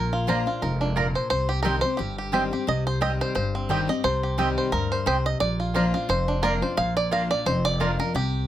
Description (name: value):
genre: bluegrass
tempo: 176 BPM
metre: 4/4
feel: swing 55% on 8ths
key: unclear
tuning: A4 = 440 Hz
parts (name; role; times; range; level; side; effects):
- bluegrass banjo; melody; 0.0-8.5 s; C4 to F5; -26 LUFS; right 1 dB; none
- picked steel-string acoustic guitar; accompaniment; 0.0-8.5 s; F2 to G4; -28 LUFS; left 4 dB; none
- upright bass; bass; 0.0-8.5 s; F1 to D2; -28 LUFS; right 1 dB; none
- mandolin; stabs; 0.3-7.9 s; Bb3 to Bb5; -27 LUFS; right 4 dB; none
room: light reverb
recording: none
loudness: -22 LUFS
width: side -12 dB against mid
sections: 0.0-8.5 A section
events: five-string banjo solo 0.0-8.5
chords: 0.0 Bb; 1.3 Cm; 5.4 Bb